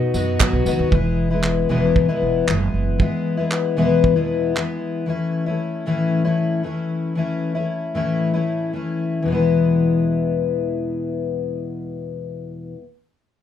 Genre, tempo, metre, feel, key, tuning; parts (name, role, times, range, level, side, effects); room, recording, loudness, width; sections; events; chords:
acoustic pop; 115 BPM; 4/4; straight; E major; A4 = 440 Hz
fingerpicked twelve-string acoustic guitar; accompaniment; 0.0-12.8 s; E2 to F#4; -19 LUFS; left 4 dB
upright bass; bass; 0.0-3.0 s; E1 to F#2; -22 LUFS; right 2 dB
cloth-damped thuddy drum kit; drums; 0.1-4.7 s; handclaps, kick drum, tambourine; -20 LUFS; right 2 dB
group handclap; percussion; 0.4-0.5 s; -25 LUFS; right 9 dB
light reverb; dark, warm production; -18 LUFS; side -10 dB against mid
0.9-9.3 A section; 9.3-13.4 B section
0.0 B; 0.9 E; 5.1 A; 9.3 E